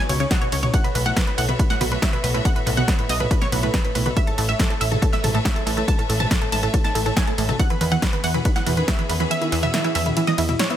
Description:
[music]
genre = uplifting trance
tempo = 140 BPM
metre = 4/4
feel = straight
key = unclear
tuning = A4 = 440 Hz
[part]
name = wide unison pluck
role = melody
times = 0.0-10.8 s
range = E4 to A5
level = -26 LUFS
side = right 1 dB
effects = sidechain pumping, tape echo
[part]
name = analog pluck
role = second line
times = 0.0-10.8 s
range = E5 to A6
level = -32 LUFS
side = left 1 dB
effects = chorus, sidechain pumping, digital delay
[part]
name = bright studio string section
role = sustained chords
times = 0.0-10.8 s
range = C#3 to E5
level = -31 LUFS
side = left 1 dB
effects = sidechain pumping
[part]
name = tight sequenced synth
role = arpeggios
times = 0.0-10.7 s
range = G#2 to E4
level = -27 LUFS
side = right 3 dB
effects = chorus, sidechain pumping, digital delay
[part]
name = plucky analog bass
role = bass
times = 0.1-10.5 s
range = A1 to E2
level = -24 LUFS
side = equal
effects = tube saturation, sidechain pumping
[part]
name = punchy analog drum machine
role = drums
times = 0.1-10.8 s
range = hi-hat, ride cymbal, snare drum, toms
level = -26 LUFS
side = left 1 dB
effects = none
[part]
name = electronic kick drum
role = drums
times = 0.3-9.0 s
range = none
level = -21 LUFS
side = equal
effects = none
[sound]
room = digital ambience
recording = none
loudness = -18 LUFS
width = side -10 dB against mid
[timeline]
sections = 0.0-10.8 A section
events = kick drops out 9.3-10.8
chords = 0.0 C#m7; 0.7 B7sus4; 4.2 Aadd9; 7.6 E6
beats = 0.31 | 0.74 1.17 1.59 2.02 | 2.45 2.88 3.31 3.74 | 4.17 4.59 5.02 5.45 | 5.88 6.31 6.74 7.17 | 7.59 8.02 8.45 8.88 | 9.31 9.74 10.17 10.59

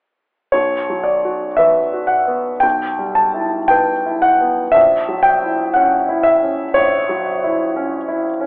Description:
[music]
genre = classical, romantic nocturne for solo piano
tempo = 56-63 BPM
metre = 4/4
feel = rubato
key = B minor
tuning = A4 = 440 Hz
[part]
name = clear concert grand piano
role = solo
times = 0.5-8.5 s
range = A#1 to A5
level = -13 LUFS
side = equal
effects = none
[sound]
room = moderate large studio reverb, RT60 1.2 s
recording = telephone sound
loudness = -13 LUFS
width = side -27 dB against mid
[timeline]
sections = 0.5-8.5 A section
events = none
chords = 0.5 B5; 2.6 Em/B; 4.8 F#7/A#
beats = | 0.53 1.58 2.64 3.71 | 4.75 5.75 6.76 7.76

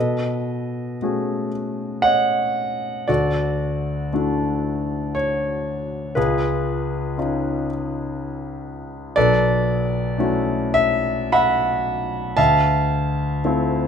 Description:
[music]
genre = classical, impressionist solo piano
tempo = 49-62 BPM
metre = 3/4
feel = rubato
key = unclear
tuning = A4 = 435 Hz
[part]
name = clear grand piano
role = solo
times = 0.0-13.9 s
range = B1 to B5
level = -19 LUFS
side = equal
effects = none
[sound]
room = moderate recital hall reverb, RT60 1.6 s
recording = close, detailed microphones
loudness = -19 LUFS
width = side -7 dB against mid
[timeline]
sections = 0.0-13.9 A section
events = none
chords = 0.0 B13; 3.1 Dadd9; 6.2 C#9; 9.2 Bm11; 12.4 Dm9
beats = 1.00 2.03 | 3.08 4.12 5.16 | 6.17 7.17 8.19 | 9.16 10.17 11.33 | 12.38 13.44

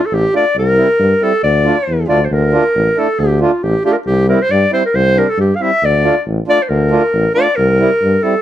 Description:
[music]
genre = klezmer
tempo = 137 BPM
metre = 2/4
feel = straight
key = D minor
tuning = A4 = 439 Hz
[part]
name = mellow clarinet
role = melody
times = 0.0-8.4 s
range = F4 to F5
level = -13 LUFS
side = left 1 dB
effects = none
[part]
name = warm tuba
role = bass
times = 0.1-8.2 s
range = A1 to G2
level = -15 LUFS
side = equal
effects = none
[part]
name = mellow accordion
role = accompaniment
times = 0.3-8.3 s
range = G3 to F4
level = -17 LUFS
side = right 3 dB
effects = none
[sound]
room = light reverb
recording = none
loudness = -11 LUFS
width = side -12 dB against mid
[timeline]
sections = 0.0-2.3 A section; 2.3-8.4 A section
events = none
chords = 0.0 Dm; 0.6 C; 1.4 Dm; 4.1 C; 5.8 Dm; 7.6 C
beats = 0.12 | 0.56 0.99 | 1.43 1.87 | 2.31 2.75 | 3.19 3.62 | 4.06 4.50 | 4.94 5.38 | 5.82 6.26 | 6.70 7.14 | 7.58 8.02

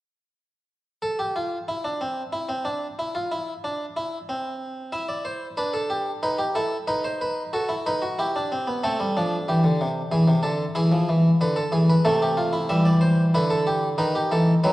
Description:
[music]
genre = classical, baroque-style 3-part fugue for harpsichord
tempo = 92 BPM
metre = 3/4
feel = straight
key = unclear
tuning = A4 = 440 Hz
[part]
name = harpsichord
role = solo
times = 1.0-14.7 s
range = C3 to E5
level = -21 LUFS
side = equal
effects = none
[sound]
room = wet recital hall reverb, RT60 1.6 s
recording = worn, warbling old tape, cassette tape, warbly pitch drift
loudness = -21 LUFS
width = side -17 dB against mid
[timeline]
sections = 1.0-14.7 A section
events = none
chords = 1.0 N.C.; 4.9 Em; 6.2 B/D#; 6.9 B7/D#; 8.2 Em; 8.8 Am; 10.1 E; 10.8 E7; 12.1 Am/C; 12.7 Em; 14.0 B/D#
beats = | 1.03 1.68 2.33 | 2.98 3.63 4.28 | 4.93 5.58 6.23 | 6.88 7.53 8.17 | 8.82 9.47 10.11 | 10.76 11.40 12.05 | 12.70 13.35 14.00 | 14.65

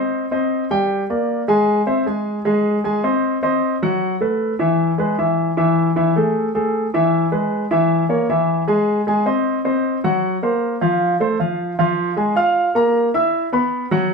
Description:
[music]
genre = jazz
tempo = 154 BPM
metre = 4/4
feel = straight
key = unclear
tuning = A4 = 442 Hz
[part]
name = warm baby grand piano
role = solo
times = 0.0-14.1 s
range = Fb3 to F6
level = -16 LUFS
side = equal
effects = none
[sound]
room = wet small room reverb, RT60 0.5 s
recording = band playing live in one room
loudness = -16 LUFS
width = side -4 dB against mid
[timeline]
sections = 0.0-11.8 A section; 11.8-14.1 B section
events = none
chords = 0.0 Abmaj7 (rootless); 0.9 Gm; 1.7 Caug; 2.5 Ab7; 4.0 B5; 4.8 E; 5.6 A5; 7.1 E; 7.9 Bbdim/Fb; 8.7 Ab; 10.2 Gbmaj7#11; 11.0 F; 11.8 Bb5; 13.3 Gb7sus4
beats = 0.11 0.50 | 0.89 1.28 1.67 2.06 | 2.45 2.84 3.23 3.62 | 4.01 4.40 4.79 5.18 | 5.57 5.96 6.34 6.73 | 7.12 7.51 7.90 8.29 | 8.68 9.07 9.46 9.84 | 10.23 10.62 11.01 11.39 | 11.78 12.17 12.56 12.95 | 13.33 13.72 14.11

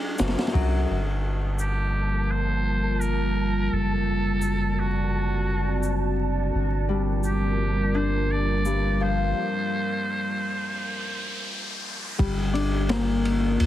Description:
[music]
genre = trip hop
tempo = 85 BPM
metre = 4/4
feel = straight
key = G minor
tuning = A4 = 440 Hz
[part]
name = trumpet with metal mute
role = melody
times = 0.0-11.5 s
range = F#4 to D5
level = -32 LUFS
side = right 1 dB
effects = dub echo
[part]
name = Celtic harp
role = arpeggios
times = 0.0-2.3, 6.9-13.7 s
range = F#2 to D4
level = -28 LUFS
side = left 4 dB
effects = ping-pong delay
[part]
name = soft dub sub bass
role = bass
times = 0.2-13.7 s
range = F#1 to D2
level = -26 LUFS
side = equal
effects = tube saturation
[part]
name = crunchy breakbeat drum kit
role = drums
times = 0.2-0.7, 12.2-13.7 s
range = kick drum, ride cymbal, snare drum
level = -29 LUFS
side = equal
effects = none
[part]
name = tube shaker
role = percussion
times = 0.2-8.8 s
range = none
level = -42 LUFS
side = left 2 dB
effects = none
[part]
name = deep dark ambient pad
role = sustained chords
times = 1.6-13.7 s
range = G3 to D5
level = -29 LUFS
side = equal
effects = chorus, built-in reverb
[part]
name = flickering grainy texture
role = texture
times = 1.5-9.4 s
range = A5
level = -37 LUFS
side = right 3 dB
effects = built-in reverb
[part]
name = riser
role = sound effects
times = 8.2-12.2 s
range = none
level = -37 LUFS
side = equal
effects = none
[sound]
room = light reverb, small room ambience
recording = heavily compressed radio sound, vinyl crackle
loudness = -23 LUFS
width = side -13 dB against mid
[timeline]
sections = 0.9-12.2 A section; 12.2-13.7 B section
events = riser 8.2-12.2; break 9.4-12.2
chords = 0.0 D7/F#; 0.9 Gm7; 3.7 D7/F#; 6.5 Gm7; 9.4 N.C.; 12.2 Gm7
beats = 0.19 | 0.89 1.60 2.31 3.01 | 3.72 4.42 5.13 5.83 | 6.54 7.25 7.95 8.66 | 9.36 10.07 10.78 11.48 | 12.19 12.89 13.60

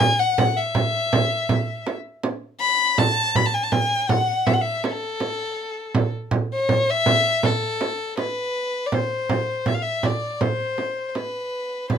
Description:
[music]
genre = Arabic maqam ensemble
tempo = 81 BPM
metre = 4/4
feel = straight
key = A maqam rast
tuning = A4 = 441 Hz
[part]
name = warm violin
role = melody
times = 0.0-12.0 s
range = A4 to B5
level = -22 LUFS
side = left 3 dB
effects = none
[part]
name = frame drum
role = percussion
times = 0.0-12.0 s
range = none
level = -23 LUFS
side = right 4 dB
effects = none
[sound]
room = moderate studio ambience, RT60 0.5 s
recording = minimal, uncompressed stereo recording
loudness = -20 LUFS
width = side -8 dB against mid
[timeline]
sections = 0.0-8.9 A section; 8.9-12.0 B section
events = none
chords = none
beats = | 0.00 0.75 1.49 2.24 | 2.98 3.73 4.47 5.21 | 5.96 6.70 7.44 8.19 | 8.93 9.67 10.42 11.16 | 11.91

